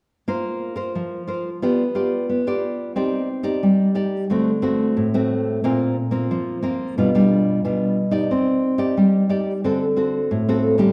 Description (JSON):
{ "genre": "samba", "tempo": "90 BPM", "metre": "4/4", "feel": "straight", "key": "Bb major", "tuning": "A4 = 439 Hz", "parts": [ { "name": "nylon-string guitar", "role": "solo", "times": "0.3-10.9 s", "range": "A2 to D5", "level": "-21 LUFS", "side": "equal", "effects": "none" } ], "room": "wet recital hall reverb, RT60 1.6 s", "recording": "recorded in a church or concert hall", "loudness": "-21 LUFS", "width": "mono", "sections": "0.3-5.6 A section; 5.6-10.9 B section", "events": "none", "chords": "0.3 Bbsus2; 1.6 G7/B; 3.0 Cmadd9; 4.3 D7; 5.6 Bbsus2; 7.0 G7/B; 8.3 Cmadd9; 9.6 D7" }